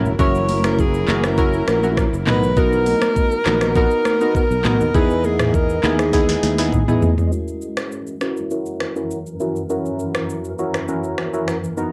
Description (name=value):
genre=afrobeats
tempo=101 BPM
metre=4/4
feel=straight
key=F# mixolydian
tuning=A4 = 440 Hz
part: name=breathy alto saxophone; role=melody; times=0.0-7.0 s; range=G#4 to C#5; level=-23 LUFS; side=equal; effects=cassette tape, tape echo
part: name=warm analog keys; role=accompaniment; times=0.0-11.9 s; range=B3 to A#4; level=-24 LUFS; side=equal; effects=chorus, low-pass filter, cassette tape
part: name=granular cloud pad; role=sustained chords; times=0.0-11.9 s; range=F#2 to D#5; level=-31 LUFS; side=equal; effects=built-in reverb, low-pass filter, cassette tape
part: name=fingered electric bass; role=bass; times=0.0-7.3 s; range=E1 to E2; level=-25 LUFS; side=equal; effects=none
part: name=afro-pop drum kit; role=drums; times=0.1-11.9 s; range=finger snaps, handclaps, hi-hat, kick drum, rim click, shaker, snare drum, toms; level=-24 LUFS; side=equal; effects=cassette tape
part: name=congas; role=percussion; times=0.2-7.2 s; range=none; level=-30 LUFS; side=equal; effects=none
room=little or no reverb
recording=home recording on cassette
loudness=-19 LUFS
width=mono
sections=0.0-7.3 A section; 7.3-11.9 B section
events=drum fill 6.1-7.3; filter sweep 7.3-11.9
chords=0.0 F#7; 2.3 Bmaj7; 4.9 Emaj7; 7.3 F#7